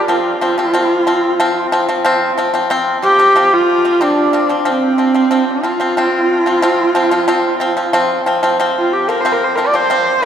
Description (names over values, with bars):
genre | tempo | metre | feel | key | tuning
mongolian traditional | 92 BPM | 4/4 | straight | F zhi mode | A4 = 439 Hz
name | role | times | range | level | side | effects
bright horsehead fiddle | melody | 0.0-10.3 s | C4 to D5 | -14 LUFS | right 1 dB | none
pipa | arpeggios | 0.0-10.3 s | F3 to C4 | -15 LUFS | left 1 dB | none
room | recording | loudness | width
wet cathedral reverb, RT60 4.4 s | recorded in a church or concert hall | -12 LUFS | side -9 dB against mid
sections
0.0-2.7 A section; 2.7-10.3 B section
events
none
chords
0.1 F5